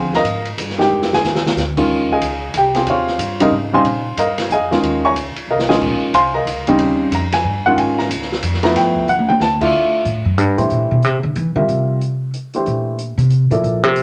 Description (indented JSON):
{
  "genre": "modal jazz",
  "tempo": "184 BPM",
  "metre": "3/4",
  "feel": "swing 63% on 8ths",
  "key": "Eb mixolydian, C mixolydian from 9.7 s",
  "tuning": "A4 = 440 Hz",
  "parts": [
    { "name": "dark baby grand piano", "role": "accompaniment", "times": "0.0-13.9 s", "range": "Db3 to Db6", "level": "-18 LUFS", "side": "equal", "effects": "none" },
    { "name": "upright bass", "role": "bass", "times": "0.0-14.0 s", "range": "Bb1 to E3", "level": "-22 LUFS", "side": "equal", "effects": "none" },
    { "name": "open jazz drum kit", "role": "drums", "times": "0.1-14.0 s", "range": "crash cymbal, hi-hat, kick drum, ride cymbal, snare drum, toms", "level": "-26 LUFS", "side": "equal", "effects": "none" }
  ],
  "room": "wet club reverb, RT60 0.8 s",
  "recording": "none",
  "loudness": "-17 LUFS",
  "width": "mono",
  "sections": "0.0-1.9 A section; 1.9-9.7 A section; 9.7-14.0 A section",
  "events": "drum fill 0.9-1.6, 5.5-5.8, 9.1-9.4; upright bass solo 9.7-14.0",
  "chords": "0.0 Ebsus2; 1.9 Eb13sus4; 8.8 G13; 9.7 C13"
}